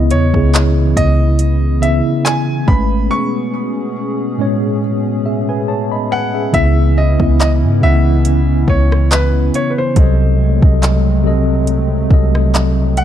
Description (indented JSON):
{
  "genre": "contemporary R&B",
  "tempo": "70 BPM",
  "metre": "4/4",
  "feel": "swing 54% on 16ths",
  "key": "C# minor",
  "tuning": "A4 = 441 Hz",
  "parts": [
    { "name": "mellow tine electric piano", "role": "accompaniment", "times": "0.0-13.0 s", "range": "A2 to B5", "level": "-16 LUFS", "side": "equal", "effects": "medium stereo tremolo" },
    { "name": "hollow soft pad", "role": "sustained chords", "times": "0.1-13.0 s", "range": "B2 to G#4", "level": "-22 LUFS", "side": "equal", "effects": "chorus, sidechain pumping" },
    { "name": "warm 808-style bass", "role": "bass", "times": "0.0-13.0 s", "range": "G#1 to G#2", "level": "-13 LUFS", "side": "equal", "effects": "none" },
    { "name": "warm baby grand piano", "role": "melody", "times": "0.1-13.0 s", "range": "B4 to C#6", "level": "-20 LUFS", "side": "equal", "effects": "digital delay" },
    { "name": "smooth R&B drum kit", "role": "drums", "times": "0.1-13.0 s", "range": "handclaps, hi-hat, kick drum, rim click", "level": "-15 LUFS", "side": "equal", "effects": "overdrive" }
  ],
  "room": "little or no reverb",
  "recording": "dark, warm production",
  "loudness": "-11 LUFS",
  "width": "side -10 dB against mid",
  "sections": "0.0-6.5 A section; 6.5-13.0 B section",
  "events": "break 3.1-6.5",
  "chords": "0.0 C#m9; 2.7 Amaj9; 6.5 C#m9; 10.0 G#7b9/B#",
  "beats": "0.54 1.40 2.25 | 3.11 3.97 4.82 5.68 | 6.54 7.39 8.25 9.11 | 9.97 10.82 11.68 12.54"
}